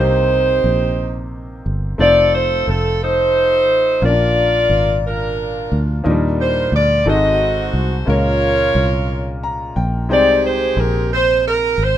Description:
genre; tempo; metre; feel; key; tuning
slow gospel; 59 BPM (dotted quarters); 6/8; straight; unclear; A4 = 440 Hz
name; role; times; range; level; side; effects
bright saxophone section; melody; 0.0-12.0 s; D4 to Eb5; -15 LUFS; equal; none
clear baby grand piano; accompaniment; 0.0-12.0 s; Ab2 to Bb5; -23 LUFS; left 1 dB; none
fingered electric bass; bass; 0.0-12.0 s; F1 to Eb2; -20 LUFS; equal; none
room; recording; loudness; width
moderate small room reverb, RT60 0.5 s; rough home demo mix; -14 LUFS; side -11 dB against mid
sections
0.0-12.0 A section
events
grand piano fill 9.1-10.1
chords
0.0 Cm7; 2.0 F7; 4.0 Bb; 6.0 Ebmaj7; 7.1 Ab7b9; 8.1 Db6; 10.1 Abmaj7

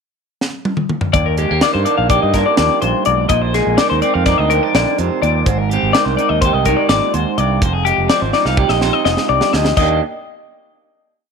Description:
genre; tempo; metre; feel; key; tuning
math rock and midwest emo; 250 BPM (eighths); 9/8; straight; Eb major; A4 = 440 Hz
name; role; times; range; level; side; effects
crisp fusion drum kit; drums; 0.4-9.9 s; crash cymbal, hi-hat, kick drum, snare drum, toms; -19 LUFS; right 1 dB; none
electric guitar through a small old amp; accompaniment; 1.1-10.0 s; Eb2 to G4; -19 LUFS; right 15 dB; none
twelve-string electric guitar; arpeggios; 1.1-10.0 s; G4 to F5; -16 LUFS; left 11 dB; none
growling fingered electric bass; bass; 1.1-10.0 s; F1 to G2; -19 LUFS; right 1 dB; overdrive
room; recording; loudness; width
light reverb, studio ambience; 1960s-style stereo with parts hard left and right; -13 LUFS; side -5 dB against mid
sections
0.0-1.1 pickup bar; 1.1-9.8 A section; 9.8-11.3 final chord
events
drum fill 0.4-1.1, 8.3-9.8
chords
0.0 N.C.; 1.1 Ebmaj9; 3.3 Bb9sus4; 5.5 Abmaj9; 7.6 Fm9; 9.8 Ebmaj7

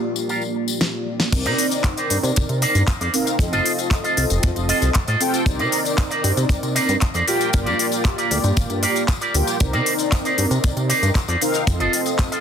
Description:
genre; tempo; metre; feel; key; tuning
nu-disco, nu disco; 116 BPM; 4/4; straight; C dorian; A4 = 439 Hz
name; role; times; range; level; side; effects
mellow synth brass; accompaniment; 0.0-12.4 s; Bb3 to G5; -23 LUFS; equal; chorus, ping-pong delay
electric guitar with an envelope filter; riff; 0.0-12.4 s; Eb4 to Eb5; -24 LUFS; right 1 dB; wide subtle chorus, ping-pong delay
tambourine; percussion; 0.2-12.4 s; none; -32 LUFS; left 11 dB; none
pop drum kit; drums; 0.8-12.4 s; crash cymbal, handclaps, hi-hat, shaker, snare drum; -24 LUFS; left 2 dB; studio reverb
chorused synth bass; bass; 1.3-11.9 s; F1 to C3; -22 LUFS; equal; sidechain pumping
kick drum; drums; 1.3-12.3 s; none; -19 LUFS; equal; studio reverb
room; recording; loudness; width
light reverb; dense, heavily limited modern master; -17 LUFS; side -8 dB against mid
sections
0.0-1.3 A section; 1.3-12.4 B section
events
filter sweep on drum 0.0-1.3; drum fill 0.8-1.3; drop 1.3-12.4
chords
0.0 Gm7; 1.3 Cm9; 3.4 F7; 5.5 Cm9; 7.3 Gm7; 9.6 Cm9; 11.7 F7

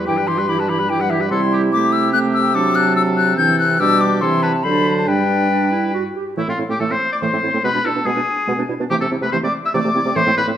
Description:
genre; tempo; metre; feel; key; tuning
quick classical-period movement for wind quintet; 143 BPM; 3/4; straight; G major, A minor from 6.4 s; A4 = 441 Hz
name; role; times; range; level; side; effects
clear oboe; second line; 0.0-10.5 s; E4 to E5; -22 LUFS; left 1 dB; none
warm French horn; accompaniment; 0.0-10.5 s; E3 to D4; -23 LUFS; right 1 dB; none
warm clarinet; accompaniment; 0.0-10.5 s; A3 to G4; -23 LUFS; right 6 dB; none
mellow bassoon; bass; 0.0-10.5 s; G2 to D3; -23 LUFS; right 1 dB; none
silver concert flute; melody; 0.1-10.4 s; E5 to G6; -20 LUFS; left 6 dB; none
room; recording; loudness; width
wet recital hall reverb, RT60 1.5 s; none; -15 LUFS; side -10 dB against mid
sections
0.0-6.4 A section; 6.4-10.6 B section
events
none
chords
0.1 Em/G; 1.3 Am7/C; 2.5 D7/C; 3.8 G/B; 4.2 Am/C; 4.6 D7; 5.1 G; 6.4 Am; 7.6 E7/B (rootless); 8.9 Am/C

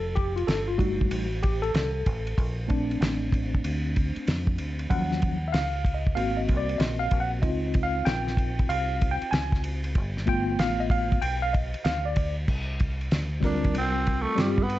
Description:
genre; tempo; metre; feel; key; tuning
hip hop, jazz-hop; 95 BPM; 4/4; swing 65% on 16ths; C dorian; A4 = 442 Hz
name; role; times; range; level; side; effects
tine electric piano; accompaniment; 0.0-14.6 s; F3 to Ab5; -28 LUFS; left 1 dB; overdrive, fast stereo tremolo
deep dub fingered electric bass; bass; 0.0-14.8 s; F1 to G2; -30 LUFS; equal; none
cloth-damped thuddy drum kit; drums; 0.2-14.8 s; crash cymbal, hi-hat, kick drum, ride cymbal, snare drum; -27 LUFS; equal; none
growling tenor saxophone; melody; 13.5-14.8 s; G3 to D4; -27 LUFS; right 2 dB; slapback echo, plate reverb
room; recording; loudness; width
moderate studio ambience, RT60 0.5 s; vinyl crackle, nothing above 7.9 kHz; -24 LUFS; side -15 dB against mid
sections
0.0-12.5 A section; 12.5-14.8 A section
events
tine electric piano solo 0.0-12.5; tenor saxophone solo 12.5-14.8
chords
0.0 F7; 2.4 Bbmaj7; 4.9 Ebm7; 6.2 Ab7; 7.4 Dbmaj7; 10.0 G7; 12.5 C5

